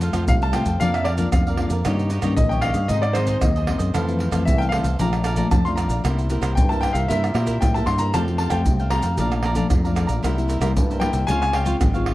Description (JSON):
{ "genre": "samba and choro", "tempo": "114 BPM", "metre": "4/4", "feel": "straight", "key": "F major", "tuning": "A4 = 440 Hz", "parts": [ { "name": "cavaquinho", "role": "accompaniment", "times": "0.0-12.1 s", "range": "D4 to Bb5", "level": "-30 LUFS", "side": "right 3 dB", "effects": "none" }, { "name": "nylon-string guitar", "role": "accompaniment", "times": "0.0-12.1 s", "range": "F2 to G4", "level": "-26 LUFS", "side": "left 3 dB", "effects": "none" }, { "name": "fingered electric bass with an envelope filter", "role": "bass", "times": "0.0-12.1 s", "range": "Ab1 to Bb2", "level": "-23 LUFS", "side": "equal", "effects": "none" }, { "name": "maracas, pandeiro, surdo and tamborim", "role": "percussion", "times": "0.0-12.1 s", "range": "none", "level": "-23 LUFS", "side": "right 1 dB", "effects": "none" }, { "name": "clear grand piano", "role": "melody", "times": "0.3-12.0 s", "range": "C5 to C6", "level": "-26 LUFS", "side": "left 1 dB", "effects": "none" } ], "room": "small room ambience", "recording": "dry, close 1970s-style studio recording", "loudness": "-18 LUFS", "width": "side -16 dB against mid", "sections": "0.0-12.1 A section", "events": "none", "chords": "0.0 F; 0.8 Bb/F; 1.9 Eb7/G; 2.9 Ab; 3.9 Fmaj7; 5.0 Bbmaj7; 6.0 C7; 8.1 Fadd9; 9.2 Bbmaj7; 10.2 C7; 11.3 Dbmaj7", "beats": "0.28 0.81 1.33 | 1.85 2.38 2.90 3.42 | 3.95 4.47 5.00 5.52 | 6.04 6.57 7.09 7.62 | 8.14 8.66 9.19 9.71 | 10.24 10.76 11.28 11.81" }